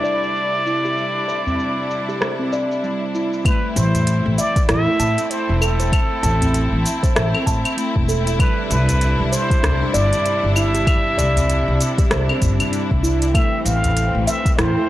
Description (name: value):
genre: organic downtempo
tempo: 97 BPM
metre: 4/4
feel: swing 59% on 16ths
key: A minor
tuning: A4 = 442 Hz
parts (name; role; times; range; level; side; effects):
- trumpet with plunger mute; melody; 0.0-14.9 s; A4 to F5; -24 LUFS; right 1 dB; tape echo, shimmer reverb
- clear studio string section; sustained chords; 0.0-14.9 s; C3 to E4; -26 LUFS; left 1 dB; sidechain pumping, shimmer reverb
- steel tongue drum; arpeggios; 0.0-14.9 s; G3 to A5; -23 LUFS; right 1 dB; tape echo, shimmer reverb
- organic electronic drum kit; drums; 0.0-14.7 s; claves, hi-hat, rim click, shaker; -24 LUFS; left 1 dB; low-pass filter on perc, low-pass filter on snare, low-pass filter on hats, low-pass filter on room
- udu; percussion; 1.5-14.7 s; none; -26 LUFS; left 1 dB; none
- electronic kick drum; drums; 3.5-14.6 s; none; -18 LUFS; equal; none
- upright bass; bass; 3.8-14.7 s; E1 to A2; -20 LUFS; equal; sidechain pumping
room: light reverb, studio reverb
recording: dry, gritty hardware recording, cassette tape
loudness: -16 LUFS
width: side -14 dB against mid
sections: 0.0-3.5 A section; 3.5-14.9 B section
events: filter sweep on steel tongue drum 0.0-3.5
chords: 0.0 Cadd9; 3.5 Am; 8.4 Cadd9; 13.3 Am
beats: 0.36 | 0.97 1.59 2.21 2.83 | 3.45 4.07 4.69 5.30 | 5.92 6.54 7.16 7.78 | 8.40 9.02 9.63 10.25 | 10.87 11.49 12.11 12.73 | 13.35 13.96 14.58